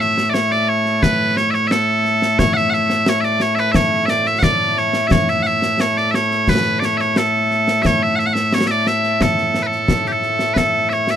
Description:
scottish traditional, Scottish pipe music; 88 BPM; 2/4; straight; A major; A4 = 439 Hz
loud bright bagpipes; melody; 0.0-11.2 s; A2 to F#5; -15 LUFS; equal
concert snare drum and concert bass drum; drums; 0.0-11.2 s; -21 LUFS; left 1 dB
light reverb; minimal, uncompressed stereo recording; -14 LUFS; side -9 dB against mid
0.0-10.6 A section

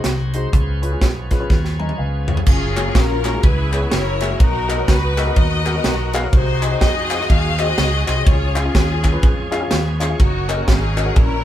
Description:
uptempo gospel; 124 BPM; 4/4; swing 61% on 8ths; F# major; A4 = 440 Hz
bright tonewheel organ; sustained chords; 0.0-11.4 s; D#3 to C#5; -30 LUFS; right 2 dB; fast rotary speaker, overdrive
fingered electric bass; bass; 0.0-11.4 s; F#1 to E#2; -21 LUFS; equal
crisp fusion drum kit; drums; 0.0-11.3 s; crash cymbal, hi-hat, kick drum, ride cymbal, snare drum, toms; -17 LUFS; equal
warm upright piano; accompaniment; 0.3-11.4 s; A#2 to A#5; -25 LUFS; left 2 dB
clear studio string section; melody; 2.5-11.4 s; A#3 to E#5; -22 LUFS; left 2 dB
group handclap; percussion; 2.8-11.1 s; -29 LUFS; left 2 dB
moderate small room reverb, RT60 0.5 s; band playing live in one room; -15 LUFS; side -12 dB against mid
0.0-2.5 A section; 2.5-11.4 B section
drum fill 1.5-2.5; upright piano fill 1.5-2.5
0.0 G#7; 0.5 C#7; 2.5 F#maj7; 3.4 C#m7; 3.9 F#9; 4.4 Bmaj7; 6.3 G#7/B#; 8.3 C#; 10.2 F#6

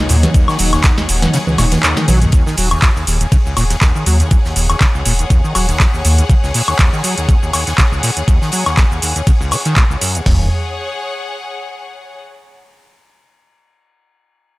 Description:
acid house; 121 BPM; 4/4; swing 55% on 16ths; Eb minor; A4 = 440 Hz
warm analog pad; sustained chords; 0.0-2.3 s; Eb3 to Eb4; -24 LUFS; left 1 dB; chorus, sidechain pumping
acid bass, saw; riff; 0.0-10.5 s; Db2 to Gb3; -19 LUFS; equal; overdrive, ensemble chorus, tape echo
clear symphonic string section; texture; 0.0-12.2 s; Ab4 to Gb5; -24 LUFS; left 2 dB; sidechain pumping
warm sub bass; bass; 0.1-6.2, 10.3-10.5 s; Eb1 to Eb2; -15 LUFS; equal; tube saturation, sidechain pumping
booming analog drum machine; drums; 0.1-10.2 s; congas, handclaps, hi-hat, shaker, snare drum, toms, woodblock; -17 LUFS; equal; overdrive
huge arena drum kit; drums; 0.1-10.1 s; hi-hat, ride cymbal, snare drum; -30 LUFS; left 1 dB; sidechain pumping on cymbals, high-pass filter on cymbals, sidechain pumping on hats, high-pass filter on hats, high-pass filter on snare, high-pass filter on room
clean 12-bit digital drum machine; drums; 0.3-10.4 s; hi-hat, kick drum, toms; -12 LUFS; equal
little or no reverb; dry, gritty hardware recording; -11 LUFS; side -20 dB against mid
0.0-2.3 A section; 2.3-10.3 B section; 10.3-12.2 C section
drop 0.0-2.3; kick drops out 1.3-2.3; drum fill 2.0-2.3
0.0 Ebm

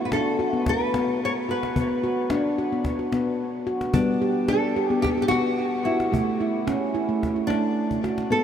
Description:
world meditative, meditative tuned percussion; 110 BPM; 4/4; straight; B minor; A4 = 440 Hz
nylon-string guitar; melody; 0.0-8.4 s; D4 to C#5; -27 LUFS; left 1 dB; wide subtle chorus, analog delay
handpan; arpeggios; 0.0-8.4 s; G3 to G4; -23 LUFS; equal
cajon; percussion; 0.1-8.3 s; -31 LUFS; left 1 dB
wet huge ambient reverb, RT60 8.0 s; dreamy mix soaked in reverb; -22 LUFS; side -8 dB against mid
0.0-8.3 A section
drum fill 7.9-8.3
0.0 Bm; 3.9 G; 6.1 A

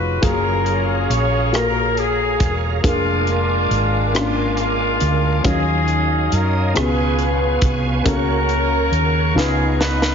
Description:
slow gospel; 46 BPM (dotted quarters); 6/8; straight; F# major; A4 = 442 Hz
warm horn section; melody; 0.0-10.1 s; G#3 to C#5; -21 LUFS; left 1 dB; slapback echo
warm upright piano; accompaniment; 0.0-10.1 s; B2 to E#5; -23 LUFS; left 3 dB
hollow-body short-scale fingered electric bass; bass; 0.0-10.1 s; E1 to F#2; -21 LUFS; right 1 dB
bright tonewheel organ; sustained chords; 0.2-10.1 s; B3 to D#6; -26 LUFS; right 4 dB; fast rotary speaker, chorus vibrato
tight funk drum kit; drums; 0.2-10.1 s; hi-hat, kick drum, rim click, snare drum; -22 LUFS; equal
moderate concert hall reverb, RT60 2.4 s; heavily compressed radio sound, multiband compression, nothing above 7.5 kHz; -16 LUFS; side -7 dB against mid
0.0-10.1 A section
drum fill 9.4-10.1
0.2 F#maj9; 2.8 A#7/E#; 5.4 D#m9; 6.8 C#7; 8.1 F#/C#; 9.4 C#9

